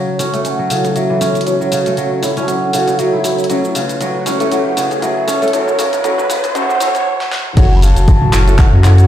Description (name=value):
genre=afro house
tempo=118 BPM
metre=4/4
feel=swing 56% on 16ths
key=F# minor pentatonic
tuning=A4 = 441 Hz
part: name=mellow hollow bansuri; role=melody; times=0.0-9.1 s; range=C#5 to B5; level=-20 LUFS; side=right 1 dB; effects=low-pass filter, tape echo
part: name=warm analog pad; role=sustained chords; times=0.0-9.1 s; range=F#3 to C#5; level=-23 LUFS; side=right 1 dB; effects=chorus, tremolo, sidechain pumping
part: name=kora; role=arpeggios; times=0.0-9.1 s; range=C#3 to E4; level=-20 LUFS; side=right 1 dB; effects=sidechain pumping, low-pass filter, tape echo
part: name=riser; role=sound effects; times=1.4-7.1 s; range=none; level=-26 LUFS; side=equal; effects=none
part: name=mellow synth brass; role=stabs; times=0.2-9.1 s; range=C#4 to C#5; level=-20 LUFS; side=left 1 dB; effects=chorus, phaser, sidechain pumping, tape echo
part: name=deep house drum kit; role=drums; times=0.2-9.1 s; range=cabasa, crash cymbal, handclaps, hi-hat, snare drum, toms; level=-22 LUFS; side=equal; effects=high-pass filter on hats, high-pass filter on perc, high-pass filter on toms, high-pass filter on snare, high-pass filter on cymbals, high-pass filter on room
part: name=warm sub bass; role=bass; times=7.6-9.1 s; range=F#1 to F#2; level=-9 LUFS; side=equal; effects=sidechain pumping
part: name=electronic kick drum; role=drums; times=7.6-8.7 s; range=none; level=-10 LUFS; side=equal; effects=none
room=moderate lush hall reverb, RT60 2.2 s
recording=played on a big sound system in a bare room, stone room reverb, high-pass filter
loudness=-12 LUFS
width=side -11 dB against mid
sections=0.0-7.6 A section; 7.6-9.1 B section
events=build-up 0.0-7.6; drum fill 0.0-7.1, 7.2-7.6; filter sweep on kora 0.0-7.6; filter sweep on analog polysynth 0.0-7.6; filter sweep on analog synth pad 0.0-7.6; riser 1.4-7.1; stop 7.1-7.6; drop 7.6-9.1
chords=0.0 F#m7; 3.5 A; 7.6 F#m7